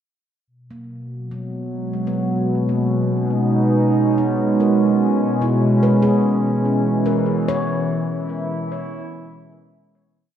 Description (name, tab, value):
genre	ambient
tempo	73 BPM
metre	3/4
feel	straight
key	B major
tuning	A4 = 440 Hz
part	warbly tape-like pad	sustained chords	1.1-10.3 s	B2 to E4	-18 LUFS	right 1 dB	chorus, built-in reverb
part	analog drone	drone	0.9-10.4 s	B2	-25 LUFS	left 1 dB	chorus
part	handpan	arpeggios	0.7-10.2 s	F#3 to C#5	-28 LUFS	left 2 dB	analog delay
room	wet spring reverb, RT60 2.6 s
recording	echo-heavy mix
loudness	-16 LUFS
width	side -9 dB against mid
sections	0.5-10.3 A section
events	fade-in on handpan 0.5-10.3; filter sweep on ambient pad 0.5-10.3; fade-out 7.1-10.3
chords	0.5 B69; 5.4 E6